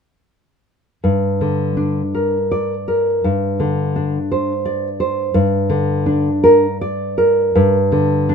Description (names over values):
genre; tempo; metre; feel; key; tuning
classical; 83 BPM; 3/4; uneven beats, rubato; G minor; A4 = 441 Hz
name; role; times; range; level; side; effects
nylon-string guitar; accompaniment; 1.0-8.3 s; G2 to D5; -14 LUFS; equal; none
room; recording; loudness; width
light reverb; minimal, uncompressed stereo recording; -15 LUFS; side -6 dB against mid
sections
1.0-8.3 A section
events
none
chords
1.0 Gm; 3.2 Gsus4; 5.4 Gm